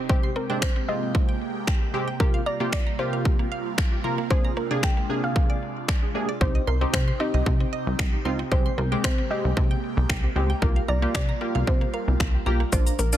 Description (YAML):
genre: dance-pop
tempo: 114 BPM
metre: 4/4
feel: straight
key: unclear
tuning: A4 = 438 Hz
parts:
  - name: airy breathy pad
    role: sustained chords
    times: 0.0-13.2 s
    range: C3 to G4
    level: -33 LUFS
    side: right 3 dB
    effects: chorus, phaser, sidechain pumping
  - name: mallet-like synth pluck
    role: arpeggios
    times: 0.0-13.2 s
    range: Bb3 to C6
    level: -36 LUFS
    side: right 4 dB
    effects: chorus, sidechain pumping, ping-pong delay
  - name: soft round pluck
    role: melody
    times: 0.1-13.2 s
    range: Bb4 to G5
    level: -32 LUFS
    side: equal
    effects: chorus, ping-pong delay
  - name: funky polysynth comp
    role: accompaniment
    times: 0.1-13.2 s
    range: C3 to Bb4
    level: -29 LUFS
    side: equal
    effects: chorus, sidechain pumping
  - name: house drum kit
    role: drums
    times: 0.1-13.2 s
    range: finger snaps, kick drum, shaker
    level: -23 LUFS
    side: equal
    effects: overdrive, soft clipping on snare
  - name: plucky analog bass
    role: bass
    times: 6.4-13.2 s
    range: Bb1 to C3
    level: -25 LUFS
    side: equal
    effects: sidechain pumping
room: little or no reverb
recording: dense, heavily limited modern master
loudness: -22 LUFS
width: side -12 dB against mid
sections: 0.0-13.2 A section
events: none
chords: 0.1 Abmaj7/C; 2.2 Gm7/C; 4.3 Bb7/C; 6.4 Cm; 8.5 Abmaj7/C; 10.6 Gm7/C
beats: | 0.10 0.62 1.15 1.67 | 2.20 2.73 3.25 3.78 | 4.30 4.83 5.36 5.88 | 6.41 6.94 7.46 7.99 | 8.52 9.04 9.57 10.10 | 10.62 11.15 11.67 12.20 | 12.73